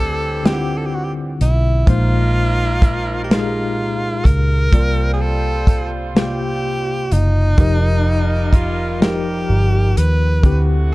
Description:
slow six-eight R&B; 42 BPM (dotted quarters); 6/8; straight; A4 = 440 Hz
warm tenor saxophone; melody; 0.0-10.9 s; Eb4 to B4; -22 LUFS; equal
tine electric piano; accompaniment; 0.0-10.9 s; Bb2 to F#5; -23 LUFS; left 2 dB; medium stereo tremolo
clear horn section; stabs; 0.0-10.9 s; C3 to F#5; -30 LUFS; right 3 dB; tape echo
vintage muted fingered electric bass; bass; 0.0-10.9 s; F1 to Eb2; -17 LUFS; equal
warm soul drum kit; drums; 0.5-10.7 s; hi-hat, kick drum, snare drum; -14 LUFS; equal
little or no reverb; dark, warm production; -14 LUFS; side -20 dB against mid
0.0-10.9 A section
0.0 D9sus4; 1.9 Bb9sus4; 4.7 C9sus4; 7.6 F9sus4; 10.4 D9sus4
0.44 | 1.87 3.29 | 4.72 6.15 | 7.58 9.01 | 10.44

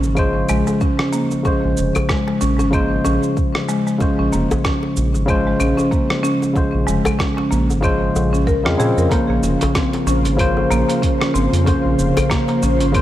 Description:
organic downtempo; 94 BPM; 4/4; swing 57% on 16ths; Bb minor; A4 = 440 Hz
barky tine electric piano; accompaniment; 0.0-13.0 s; Db3 to C5; -20 LUFS; left 2 dB; overdrive, sidechain pumping, digital delay
round analog bass; bass; 0.0-13.0 s; F1 to Bb2; -20 LUFS; right 1 dB; sidechain pumping
dusty soul sampler-style drum kit; drums; 0.0-13.0 s; claves, hi-hat, rim click, shaker; -26 LUFS; equal; overdrive, small room ambience
djembe; percussion; 0.0-12.6 s; -26 LUFS; equal
electronic kick drum; drums; 0.2-13.0 s; -20 LUFS; right 1 dB; small room ambience
buzzing marimba with medium hard mallets; arpeggios; 0.5-13.0 s; Ab3 to Bb4; -21 LUFS; right 1 dB; digital delay
ethereal airy pad; sustained chords; 9.6-13.0 s; Db3 to C5; -24 LUFS; left 1 dB; ensemble chorus, built-in reverb, sidechain pumping
light reverb, digital ambience; -15 LUFS; side -13 dB against mid
0.0-9.1 A section; 9.1-13.0 B section
0.0 Bbm7
0.18 0.81 | 1.45 2.09 2.73 3.37 | 4.01 4.64 5.28 5.92 | 6.56 7.20 7.84 8.47 | 9.11 9.75 10.39 11.03 | 11.67 12.30 12.94

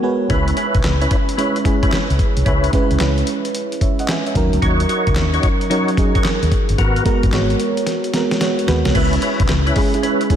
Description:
R&B, new jack swing; 111 BPM; 4/4; swing 66% on 16ths; C# dorian; A4 = 440 Hz
mellow FM electric piano; accompaniment; 0.0-10.4 s; F#3 to G#5; -19 LUFS; right 2 dB; chorus, slapback echo
percussive tonewheel organ; stabs; 0.3-10.2 s; B3 to C#5; -22 LUFS; left 1 dB; overdrive, chorus vibrato, slow rotary speaker, tape echo
vintage muted fingered electric bass; bass; 0.3-9.7 s; G1 to D#2; -19 LUFS; equal
dusty soul sampler-style drum kit; drums; 0.3-10.4 s; crash cymbal, handclaps, hi-hat, kick drum, snare drum; -19 LUFS; equal
moderate lush hall reverb, RT60 2.9 s; big arena sound; -15 LUFS; side -9 dB against mid
0.0-8.9 A section; 8.9-10.4 B section
FM electric piano fill 0.0, 8.1-8.9; drum fill 7.9-8.9
0.3 C#m7; 4.4 D#m7; 6.8 G#m9; 8.9 C#m7
| 0.30 0.84 1.38 1.92 | 2.46 3.00 3.54 4.08 | 4.62 5.16 5.70 6.25 | 6.79 7.33 7.87 8.41 | 8.95 9.49 10.03

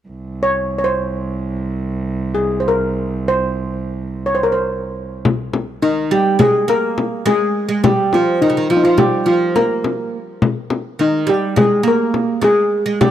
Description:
Turkish makam ensemble; 209 BPM (eighths); 9/8; straight; C makam kurdi; A4 = 439 Hz
muted cello; drone; 0.1-5.3 s; C2; -24 LUFS; right 2 dB
steel pan; melody; 0.4-13.1 s; Eb4 to Db5; -16 LUFS; left 1 dB
frame drum; percussion; 5.3-13.1 s; -17 LUFS; left 4 dB
oud; second line; 5.8-13.1 s; Db3 to Bb3; -18 LUFS; right 5 dB
light reverb, studio reverb; dry, close 1970s-style studio recording; -15 LUFS; side -11 dB against mid
0.1-5.2 A section; 5.2-13.1 B section
| 0.08 0.36 0.65 0.94 1.23 1.51 1.80 2.09 2.38 | 2.67 2.95 3.24 3.53 3.81 4.10 4.39 4.68 4.96 | 5.25 5.54 5.82 6.11 6.40 6.69 6.97 7.26 7.55 | 7.83 8.12 8.41 8.70 8.98 9.27 9.56 9.85 10.13 | 10.42 10.71 10.99 11.28 11.57 11.86 12.14 12.43 12.72 | 13.01

